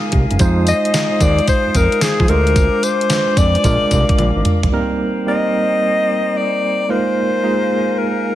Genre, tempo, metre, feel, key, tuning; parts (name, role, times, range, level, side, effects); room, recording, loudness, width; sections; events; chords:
R&B, new jack swing; 111 BPM; 4/4; swing 67% on 16ths; C minor; A4 = 440 Hz
tine electric piano; accompaniment; 0.0-8.3 s; G3 to Eb5; -20 LUFS; right 3 dB; medium tremolo
hollow flute section; sustained chords; 0.0-8.3 s; Bb4 to Eb6; -26 LUFS; left 5 dB
fat analog bass; bass; 0.1-4.7 s; F#1 to F3; -16 LUFS; equal
clean 12-bit digital drum machine; drums; 0.1-4.7 s; hi-hat, kick drum, snare drum, tambourine, toms; -17 LUFS; equal; gated reverb
warm alto saxophone; melody; 0.7-8.3 s; Ab4 to Eb5; -18 LUFS; left 2 dB; digital delay
light reverb, digital ambience; -13 LUFS; side -13 dB against mid
0.0-4.7 A section; 4.7-8.3 A section
drum fill 4.2-4.7
0.4 Fm7; 2.3 Dm7b5; 3.6 Bb7; 4.7 Cm7; 6.9 Bb7sus4